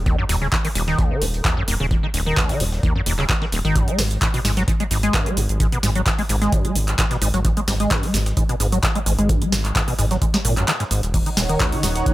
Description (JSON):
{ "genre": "acid house", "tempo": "130 BPM", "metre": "4/4", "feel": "swing 53% on 16ths", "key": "unclear", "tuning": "A4 = 440 Hz", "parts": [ { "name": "round analog bass", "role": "bass", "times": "0.0-12.0 s", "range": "Eb1 to Ab1", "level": "-22 LUFS", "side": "equal", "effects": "sidechain pumping" }, { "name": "acid bass, square", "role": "riff", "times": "0.1-12.1 s", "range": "Eb1 to Ab3", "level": "-23 LUFS", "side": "equal", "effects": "overdrive, analog chorus, sidechain pumping, tape echo" }, { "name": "breakbeat sampler-style drum kit", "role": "drums", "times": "0.1-12.1 s", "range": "hi-hat, snare drum", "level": "-35 LUFS", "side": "right 1 dB", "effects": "none" }, { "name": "electronic kick drum", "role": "drums", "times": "0.1-12.1 s", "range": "none", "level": "-21 LUFS", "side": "equal", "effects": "none" }, { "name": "booming analog drum machine", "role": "drums", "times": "0.3-12.1 s", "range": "cabasa, crash cymbal, handclaps, hi-hat, snare drum", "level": "-24 LUFS", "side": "equal", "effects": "none" }, { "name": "lush unison pad", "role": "sustained chords", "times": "11.1-12.1 s", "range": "Eb4 to Gb5", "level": "-25 LUFS", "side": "right 2 dB", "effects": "chorus, phaser, sidechain pumping" } ], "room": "digital ambience", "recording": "none", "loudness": "-17 LUFS", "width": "side -16 dB against mid", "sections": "0.0-12.1 A section", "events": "filter sweep on acid bass 0.0-12.1; kick drops out 10.7-11.1", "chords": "0.0 Eb7(no3); 3.8 Ab7(no3); 11.1 Ebm7" }